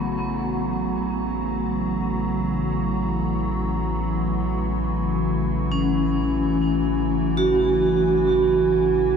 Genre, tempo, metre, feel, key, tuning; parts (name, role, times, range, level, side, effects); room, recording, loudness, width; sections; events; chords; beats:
ambient; free time; A major; A4 = 442 Hz
evolving wavetable pad; sustained chords; 0.0-9.2 s; C#3 to F#4; -24 LUFS; equal; chorus, built-in reverb
vibraphone with medium hard mallets; arpeggios; 0.0-9.2 s; B3 to F#4; -23 LUFS; right 2 dB; diffuse ambient delay
round analog bass; bass; 0.0-9.2 s; A1; -29 LUFS; left 1 dB
wet huge ambient reverb, RT60 7.3 s; in a vast, echoing space; -20 LUFS; side -6 dB against mid
0.0-9.2 A section
fade-in on ambient pad 0.0-9.2; fade-in on vibraphone 0.0-9.2; fade-in on analog synth bass 0.0-9.2
0.0 A6
free time